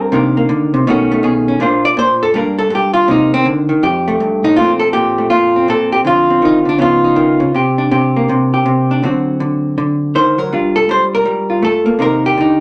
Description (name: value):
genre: solo jazz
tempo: 162 BPM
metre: 4/4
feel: swing 64% on 8ths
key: Bb major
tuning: A4 = 440 Hz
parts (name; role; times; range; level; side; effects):
- vintage hollow-body jazz guitar; solo; 0.0-12.6 s; F2 to D5; -13 LUFS; equal; none
room: wet studio reverb, RT60 0.5 s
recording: none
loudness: -13 LUFS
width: mono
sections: 0.0-4.6 A section; 4.6-12.6 B section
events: hollow-body jazz guitar solo 0.0-4.6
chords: 0.1 Cm9; 0.9 B9; 1.6 Bbadd9; 2.3 Gm; 3.1 Cm7; 3.8 Fadd9; 4.6 Bbsus2; 6.1 Dm7; 6.8 Db9; 7.5 Csus2; 9.0 D7; 10.5 Gm9; 12.0 Cm9